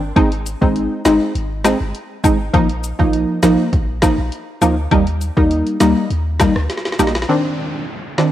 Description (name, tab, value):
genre	dancehall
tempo	101 BPM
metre	4/4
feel	straight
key	C minor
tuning	A4 = 440 Hz
part	warm 808-style bass	bass	0.0-7.2 s	G1 to Eb2	-21 LUFS	equal	none
part	punchy chord stab	accompaniment	0.2-8.3 s	Eb3 to Eb4	-16 LUFS	equal	chorus, cassette tape
part	deep house drum kit	drums	0.2-8.3 s	hi-hat, kick drum, rim click, snare drum	-18 LUFS	equal	vintage 12-bit sampler grit
part	woodblock and cabasa	percussion	0.2-7.1 s	none	-24 LUFS	left 7 dB	none
part	downlifter	sound effects	7.3-8.3 s	none	-28 LUFS	equal	none
room	light reverb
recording	home recording on cassette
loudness	-14 LUFS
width	side -12 dB against mid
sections	0.0-7.3 A section; 7.3-8.3 B section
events	drum fill 6.7-7.3; break 7.3-8.3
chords	0.2 Ab; 2.5 Bbsus4; 4.9 Eb; 7.3 Cmadd9